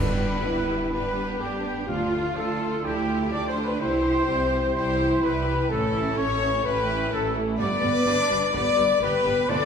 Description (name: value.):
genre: cinematic.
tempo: 126 BPM.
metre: 4/4.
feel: straight.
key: G mixolydian.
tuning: A4 = 441 Hz.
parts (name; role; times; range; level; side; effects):
clear symphonic violin section; melody; 0.0-9.7 s; F4 to D5; -34 LUFS; left 4 dB; none.
clear oboe; second line; 0.0-9.7 s; F4 to D5; -34 LUFS; right 1 dB; none.
clear studio violin section; second line; 0.0-9.7 s; D4 to B4; -34 LUFS; left 2 dB; none.
concert flute; second line; 0.0-9.7 s; F5 to D6; -33 LUFS; left 1 dB; none.
rich studio viola section; accompaniment; 0.0-9.6 s; E3 to G4; -32 LUFS; equal; none.
warm French horn section; sustained chords; 0.0-9.7 s; F4 to D5; -28 LUFS; left 4 dB; none.
bright trumpet section; stabs; 0.0-9.7 s; F4 to D5; -32 LUFS; equal; none.
rich symphonic cello section; bass; 0.0-9.7 s; A3 to F4; -29 LUFS; right 2 dB; none.
rich symphonic double bass section; bass; 0.0-9.6 s; G1 to G2; -30 LUFS; right 3 dB; none.
timpani; percussion; 0.0-2.6, 9.5-9.7 s; G2 to D3; -34 LUFS; equal; none.
room: wet recital hall reverb, RT60 1.6 s.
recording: recorded in a church or concert hall.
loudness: -22 LUFS.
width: side -6 dB against mid.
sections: 0.0-9.7 A section.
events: none.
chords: 0.0 G; 1.9 Dm; 3.8 C; 5.7 A; 7.6 G.